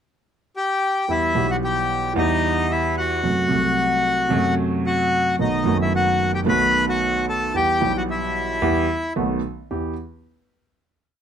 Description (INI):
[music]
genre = tango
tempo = 112 BPM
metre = 4/4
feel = rubato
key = E harmonic minor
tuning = A4 = 437 Hz
[part]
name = bandoneon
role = melody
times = 0.6-9.1 s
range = D#4 to B5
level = -21 LUFS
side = left 2 dB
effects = none
[part]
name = warm concert grand piano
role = accompaniment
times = 1.1-9.9 s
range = F#1 to G4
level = -21 LUFS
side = right 2 dB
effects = none
[sound]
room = light reverb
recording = close, detailed microphones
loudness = -18 LUFS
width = side -8 dB against mid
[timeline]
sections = 0.0-1.1 pickup bar; 1.1-9.7 A section; 9.7-11.2 final chord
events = none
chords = 0.0 N.C.; 1.1 Em; 3.2 F#dim; 5.4 B7; 7.5 Em; 9.2 B7; 9.7 Em